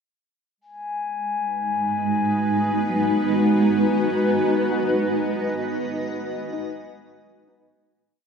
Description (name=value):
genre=ambient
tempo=63 BPM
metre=4/4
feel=straight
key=B major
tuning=A4 = 440 Hz
part: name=granular cloud pad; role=sustained chords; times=1.6-8.2 s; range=G#3 to D#5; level=-21 LUFS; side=right 1 dB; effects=built-in reverb
part: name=bowed-like drone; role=drone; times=1.9-8.3 s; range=B3 to B4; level=-31 LUFS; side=right 1 dB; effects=built-in reverb
part: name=glass harmonica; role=texture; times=0.6-8.2 s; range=G#5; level=-28 LUFS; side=left 3 dB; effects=none
part: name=soft round pluck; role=arpeggios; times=2.9-8.3 s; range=F#3 to F#4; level=-35 LUFS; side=left 1 dB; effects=none
room=wet lush hall reverb, RT60 2.5 s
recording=none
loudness=-20 LUFS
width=side -6 dB against mid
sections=0.6-8.2 A section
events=fade-in on synth drone 0.6-8.2; fade-out on glass harmonica 0.6-8.2; fade-out 4.4-8.2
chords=0.6 B6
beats=| 0.59 1.54 2.49 3.44 | 4.40 5.35 6.30 7.25